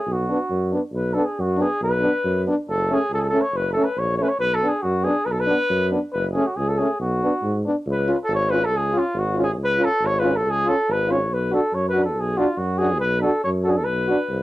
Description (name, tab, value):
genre	balkan folk, Balkan brass band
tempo	139 BPM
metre	2/4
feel	straight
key	B dorian sharp4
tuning	A4 = 440 Hz
part	dark trumpet	melody	0.0-14.4 s	E#4 to C#5	-22 LUFS	equal	cassette tape
part	warm tuba	bass	0.1-14.4 s	F#1 to G#2	-24 LUFS	equal	none
part	clear French horn	accompaniment	0.3-14.2 s	C#4 to F#4	-24 LUFS	left 2 dB	none
part	clear euphonium	accompaniment	0.3-14.2 s	A3 to D4	-26 LUFS	right 3 dB	none
room	moderate small room reverb, RT60 0.6 s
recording	home recording on cassette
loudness	-19 LUFS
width	side -16 dB against mid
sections	0.9-7.9 A section; 7.9-14.4 B section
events	none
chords	0.1 Bm; 2.7 F#m; 4.4 Bm; 6.1 F#m; 7.0 Bm; 7.9 C#; 11.3 Bm